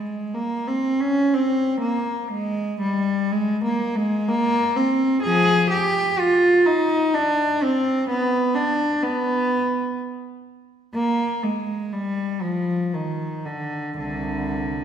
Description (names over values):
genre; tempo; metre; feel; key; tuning
classical, baroque-style suite movement for unaccompanied cello; 62 BPM; 3/4; rubato; unclear; A4 = 444 Hz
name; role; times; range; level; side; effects
rich cello; solo; 0.0-14.8 s; C2 to Ab4; -20 LUFS; equal; none
room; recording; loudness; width
wet scoring stage reverb, RT60 1.8 s; recorded in a church or concert hall; -20 LUFS; side -8 dB against mid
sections
0.0-14.8 A section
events
none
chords
none